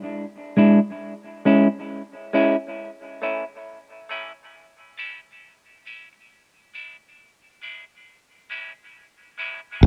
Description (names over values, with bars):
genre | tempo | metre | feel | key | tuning
dub reggae | 68 BPM | 4/4 | swing 61% on 16ths | unclear | A4 = 440 Hz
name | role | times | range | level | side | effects
semi-hollow electric guitar | accompaniment | 0.6-9.6 s | G#3 to E4 | -23 LUFS | equal | high-pass filter, dub echo
sustaining fretless electric bass | bass | 9.8-9.9 s | F#1 | -10 LUFS | equal | subtle chorus
room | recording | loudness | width
light reverb | dry, close 1970s-style studio recording | -23 LUFS | mono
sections
0.0-9.8 A section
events
filter sweep on clean electric guitar 0.0-9.8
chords
0.0 E7; 1.0 G#sus4; 2.8 A; 6.3 E7; 8.1 G#sus4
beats
0.13 1.01 1.89 | 2.77 3.65 4.54 5.42 | 6.30 7.18 8.06 8.94 | 9.82